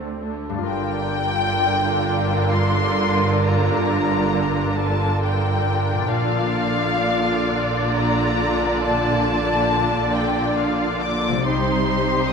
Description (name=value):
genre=cinematic, emotional film score for orchestra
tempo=67 BPM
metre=3/4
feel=rubato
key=G minor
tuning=A4 = 440 Hz
part: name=muted studio violin section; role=second line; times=0.0-12.3 s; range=C4 to D5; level=-25 LUFS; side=left 1 dB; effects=none
part: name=muted studio viola section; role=accompaniment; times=0.0-12.3 s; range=D3 to Eb4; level=-25 LUFS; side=right 2 dB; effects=none
part: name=muted studio cello section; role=bass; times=0.0-12.3 s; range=D2 to C3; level=-25 LUFS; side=right 2 dB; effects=none
part: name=concert harp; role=arpeggios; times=0.5-12.3 s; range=G2 to Bb4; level=-30 LUFS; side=left 8 dB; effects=none
part: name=muted studio violin section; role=melody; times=0.7-12.3 s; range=F5 to D6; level=-24 LUFS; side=left 4 dB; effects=none
part: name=muted studio double bass section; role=bass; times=0.7-12.3 s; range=G1 to C2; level=-27 LUFS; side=right 2 dB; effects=none
room=moderate scoring stage reverb, RT60 1.8 s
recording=minimal, uncompressed stereo recording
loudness=-18 LUFS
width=side -6 dB against mid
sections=0.7-12.3 A section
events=none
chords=0.0 D5; 0.7 Gm7; 6.1 Bb; 11.5 Cm